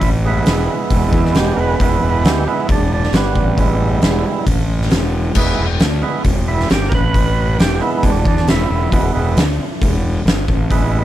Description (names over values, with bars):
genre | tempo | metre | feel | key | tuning
blues rock power trio and southern rock | 135 BPM | 4/4 | straight | E mixolydian | A4 = 440 Hz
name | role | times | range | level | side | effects
overdriven tonewheel organ | sustained chords | 0.0-11.0 s | G3 to B4 | -19 LUFS | right 5 dB | lush chorus
fuzz fingered electric bass | bass | 0.0-11.0 s | E1 to E2 | -18 LUFS | equal | overdrive
oversized low-tuned drum kit | drums | 0.0-10.8 s | crash cymbal, hi-hat, kick drum, snare drum | -17 LUFS | equal | none
room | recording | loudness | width
little or no reverb | none | -13 LUFS | side -13 dB against mid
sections
0.0-11.0 A section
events
tonewheel organ solo 0.0-11.0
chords
0.0 E